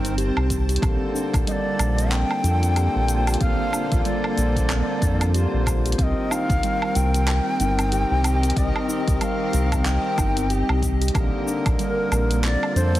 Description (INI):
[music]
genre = organic downtempo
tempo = 93 BPM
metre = 4/4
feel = swing 59% on 16ths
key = C dorian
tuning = A4 = 440 Hz
[part]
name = breathy mellow low ney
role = melody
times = 0.0-13.0 s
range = Bb4 to G5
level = -27 LUFS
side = left 1 dB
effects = tape echo
[part]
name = pedal harmonium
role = accompaniment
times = 0.0-13.0 s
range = D3 to C5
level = -29 LUFS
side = left 1 dB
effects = sidechain pumping, tape echo
[part]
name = granular cloud pad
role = sustained chords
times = 0.0-13.0 s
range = Bb3 to A5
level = -31 LUFS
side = left 1 dB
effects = built-in reverb, vintage 12-bit sampler grit, sidechain pumping
[part]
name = steel tongue drum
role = arpeggios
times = 0.0-13.0 s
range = G3 to G4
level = -28 LUFS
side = right 2 dB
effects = tape echo
[part]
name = round analog bass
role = bass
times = 0.0-13.0 s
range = G1 to F2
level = -22 LUFS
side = equal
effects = sidechain pumping
[part]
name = deep house drum kit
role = drums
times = 0.0-13.0 s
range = handclaps, hi-hat, shaker, woodblock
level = -29 LUFS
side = right 1 dB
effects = none
[part]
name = electronic kick drum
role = drums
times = 0.5-11.8 s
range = none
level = -25 LUFS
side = equal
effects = none
[sound]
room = light reverb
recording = heavily compressed radio sound, multiband compression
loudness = -19 LUFS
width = side -14 dB against mid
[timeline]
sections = 0.0-13.0 A section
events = none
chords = 0.0 Cm7; 0.8 Bbmaj7; 6.0 Cm7; 11.1 Bb